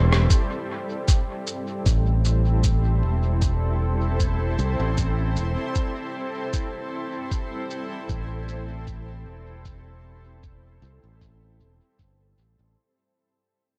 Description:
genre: ambient dub.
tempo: 77 BPM.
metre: 4/4.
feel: swing 55% on 16ths.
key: A minor.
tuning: A4 = 440 Hz.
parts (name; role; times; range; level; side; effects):
granular cloud pad; sustained chords; 0.0-12.8 s; G3 to C5; -33 LUFS; equal; built-in reverb.
modern bright fingered electric bass; bass; 0.0-12.7 s; E1 to C2; -25 LUFS; equal; none.
electronic rim click and shaker; drums; 0.1-12.6 s; none; -32 LUFS; equal; low-pass filter on perc, low-pass filter on snare, low-pass filter on room, dub echo.
electronic kick drum; drums; 0.3-12.2 s; none; -25 LUFS; equal; none.
room: light reverb, digital ambience.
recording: none.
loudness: -25 LUFS.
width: mono.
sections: 0.3-12.8 A section.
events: break 0.0-0.3; drum fill 0.0-0.3; fade-out 0.3-12.8.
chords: 0.3 Am7.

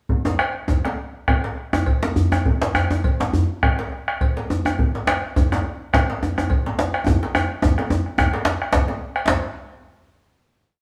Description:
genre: west african traditional, West African drum ensemble.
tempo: 101-113 BPM.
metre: 4/4.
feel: swing 55% on 16ths.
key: none.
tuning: none.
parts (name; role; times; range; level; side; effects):
bombo; percussion; 0.1-9.5 s; none; -24 LUFS; equal; none.
djembe; percussion; 0.1-9.5 s; none; -30 LUFS; equal; none.
djembe; percussion; 0.2-9.5 s; none; -24 LUFS; equal; none.
cowbell; percussion; 0.4-9.5 s; none; -36 LUFS; equal; none.
room: wet stone room reverb, RT60 1.2 s.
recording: band playing live in one room, small room reverb.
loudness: -21 LUFS.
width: mono.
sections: 0.1-9.3 A section; 9.3-10.8 final hit.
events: speeding up 0.1-10.8; drum fill 7.1-9.3.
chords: none.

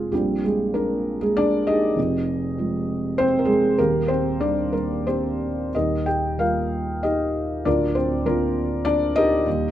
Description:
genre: classical, lyrical solo piano.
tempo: 89-102 BPM.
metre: 3/4.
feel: rubato.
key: unclear.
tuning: A4 = 440 Hz.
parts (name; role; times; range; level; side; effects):
felt-muted upright piano; solo; 0.0-9.7 s; D1 to G5; -20 LUFS; equal; none.
room: light reverb.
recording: close, detailed microphones.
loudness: -20 LUFS.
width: side -12 dB against mid.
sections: 0.0-9.7 A section.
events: none.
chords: 0.1 Bbadd9; 2.0 Fmadd9; 3.8 Eb6; 5.7 Eb; 7.7 Bbadd9/D.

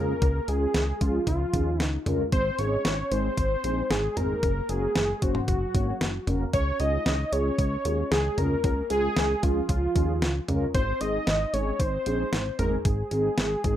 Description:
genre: synth-pop.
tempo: 114 BPM.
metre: 4/4.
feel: straight.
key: Db major.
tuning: A4 = 440 Hz.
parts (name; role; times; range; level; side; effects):
wide unison lead; melody; 0.0-13.8 s; F4 to Eb5; -28 LUFS; equal; tape echo.
mellow synth brass; accompaniment; 0.0-13.8 s; Ab3 to Db5; -31 LUFS; equal; chorus.
chorused synth bass; bass; 0.0-13.8 s; Gb1 to Eb2; -28 LUFS; equal; none.
clean 12-bit digital drum machine; drums; 0.2-13.8 s; hi-hat, kick drum, snare drum, toms; -28 LUFS; equal; none.
room: wet studio reverb, RT60 0.6 s.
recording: rough home demo mix.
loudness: -23 LUFS.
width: side -11 dB against mid.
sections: 0.0-13.8 A section.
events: none.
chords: 0.0 Db; 2.3 Ab; 4.4 Gb; 6.5 Db; 10.7 Ab.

